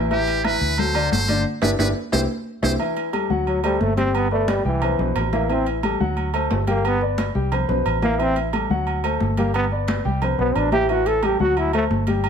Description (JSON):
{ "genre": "latin, salsa", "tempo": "178 BPM", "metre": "4/4", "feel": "straight", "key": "G major", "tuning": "A4 = 440 Hz", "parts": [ { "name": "warm grand piano", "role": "accompaniment", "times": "0.0-12.3 s", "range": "B2 to G5", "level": "-23 LUFS", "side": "left 3 dB", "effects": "none" }, { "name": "vintage muted fingered electric bass", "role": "bass", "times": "0.0-12.3 s", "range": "G1 to D2", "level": "-24 LUFS", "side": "right 1 dB", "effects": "none" }, { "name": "trumpet with metal mute", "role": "melody", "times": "0.1-2.7 s", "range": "G4 to C5", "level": "-25 LUFS", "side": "right 1 dB", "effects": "none" }, { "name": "agogo bells and timbales", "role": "percussion", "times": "0.1-12.3 s", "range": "none", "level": "-28 LUFS", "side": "right 9 dB", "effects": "none" }, { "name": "congas", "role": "percussion", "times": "0.1-12.3 s", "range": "none", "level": "-28 LUFS", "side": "left 1 dB", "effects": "none" }, { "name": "bright trombone", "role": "melody", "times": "3.5-11.8 s", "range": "E3 to A4", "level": "-22 LUFS", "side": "right 1 dB", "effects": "none" } ], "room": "moderate studio reverb, RT60 0.9 s", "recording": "none", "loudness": "-18 LUFS", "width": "side -7 dB against mid", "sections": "0.0-2.8 A section; 2.8-12.3 B section", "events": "band accent 1.5-2.8; drum fill 2.3-2.8; trombone solo 2.8-12.3", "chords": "0.1 A5; 0.8 D7; 1.5 G6; 2.1 C; 2.8 A5; 3.5 D7; 4.1 G; 4.8 Cmaj7; 5.5 A5; 6.2 D7; 6.8 G; 7.5 Cmaj7; 8.2 A5; 8.9 D7; 9.5 G; 10.2 Cmaj7; 10.9 A5; 11.6 D7", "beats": "| 0.11 0.44 0.78 1.12 | 1.45 1.79 2.12 2.46 | 2.80 3.13 3.47 3.81 | 4.14 4.48 4.82 5.16 | 5.49 5.83 6.17 6.50 | 6.84 7.18 7.52 7.85 | 8.19 8.53 8.87 9.20 | 9.54 9.88 10.22 10.55 | 10.89 11.23 11.57 11.90 | 12.24" }